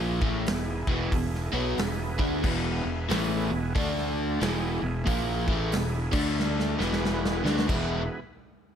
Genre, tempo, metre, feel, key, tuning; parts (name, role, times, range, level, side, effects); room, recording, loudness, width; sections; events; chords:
blues rock power trio and southern rock; 91 BPM; 4/4; swing 62% on 8ths; E mixolydian; A4 = 440 Hz
overdriven tonewheel organ; sustained chords; 0.0-8.2 s; A3 to D5; -37 LUFS; right 4 dB; chorus vibrato, slow rotary speaker
overdriven electric guitar; riff; 0.0-8.0 s; E2 to E4; -28 LUFS; left 1 dB
fuzz fingered electric bass; bass; 0.0-8.1 s; E1 to D2; -31 LUFS; equal; overdrive
big rock drum kit; drums; 0.2-7.9 s; crash cymbal, hi-hat, kick drum, snare drum; -30 LUFS; equal
light reverb; -25 LUFS; side -8 dB against mid
0.0-7.7 A section; 7.7-8.8 B section
drum fill 6.4-7.7
0.0 E; 3.8 D5; 4.4 E; 6.1 D5; 6.7 E